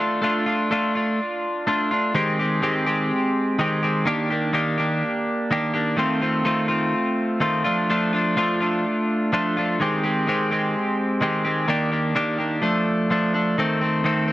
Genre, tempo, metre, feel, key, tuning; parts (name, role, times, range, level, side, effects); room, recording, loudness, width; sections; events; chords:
rock; 126 BPM; 4/4; straight; F mixolydian; A4 = 440 Hz
twelve-string electric guitar; solo; 0.0-14.3 s; Eb3 to G4; -20 LUFS; equal
moderate studio reverb, RT60 0.8 s; dark, warm production; -20 LUFS; side -16 dB against mid
0.0-13.6 A section
0.0 Dm/A; 2.2 Abmaj7; 4.1 Ebmaj7; 6.0 F7; 7.6 F6; 9.8 Abmaj7; 11.7 Ebmaj7; 12.6 F6; 13.6 Adim/Eb